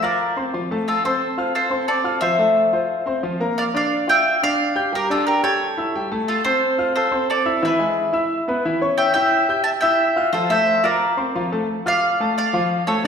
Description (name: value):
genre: latin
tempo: 178 BPM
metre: 4/4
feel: straight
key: D minor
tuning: A4 = 441 Hz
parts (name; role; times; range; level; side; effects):
- mandolin; melody; 0.0-13.0 s; F4 to A5; -19 LUFS; equal; none
- warm grand piano; accompaniment; 0.0-13.1 s; D3 to G6; -22 LUFS; left 1 dB; none
room: wet recital hall reverb, RT60 1.6 s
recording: recorded in a church or concert hall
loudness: -17 LUFS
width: side -6 dB against mid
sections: 0.9-11.7 A section; 11.7-13.1 B section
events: none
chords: 0.0 Dm7; 2.2 Fmaj7; 3.6 Gm7; 4.9 A7sus4; 5.6 A7; 6.3 Fmaj7; 7.6 E; 9.0 C#dim; 10.3 Dm7; 11.7 Dm